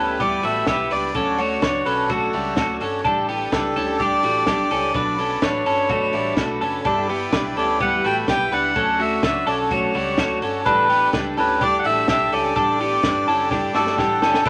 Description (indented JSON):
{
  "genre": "jangly indie pop",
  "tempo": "126 BPM",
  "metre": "4/4",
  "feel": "straight",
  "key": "unclear",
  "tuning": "A4 = 440 Hz",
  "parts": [
    { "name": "melodica", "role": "melody", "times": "0.0-14.5 s", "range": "A4 to G5", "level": "-24 LUFS", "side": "equal", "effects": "none" },
    { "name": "combo organ", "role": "accompaniment", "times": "0.0-14.5 s", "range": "D4 to G5", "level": "-31 LUFS", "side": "equal", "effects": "none" },
    { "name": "fingerpicked steel-string acoustic guitar", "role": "accompaniment", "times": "0.0-14.5 s", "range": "G2 to G4", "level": "-32 LUFS", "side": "equal", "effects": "none" },
    { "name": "twelve-string electric guitar", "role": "arpeggios", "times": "0.0-14.5 s", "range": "G3 to B4", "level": "-25 LUFS", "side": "equal", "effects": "none" },
    { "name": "vintage muted fingered electric bass", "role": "bass", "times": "0.0-14.5 s", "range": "F#1 to D2", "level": "-38 LUFS", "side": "equal", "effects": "none" },
    { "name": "compact cocktail drum kit", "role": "drums", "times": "0.2-14.5 s", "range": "crash cymbal, hi-hat, kick drum, snare drum", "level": "-30 LUFS", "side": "equal", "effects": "none" }
  ],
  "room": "moderate studio reverb, RT60 0.7 s",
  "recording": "vinyl crackle",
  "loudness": "-20 LUFS",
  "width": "mono",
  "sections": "0.0-14.5 A section",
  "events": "drum fill 13.5-14.5; transistor combo organ fill 13.5-14.5",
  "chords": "0.0 G6; 3.0 A7sus4; 4.9 Bm7; 6.9 G6; 10.7 A7sus4"
}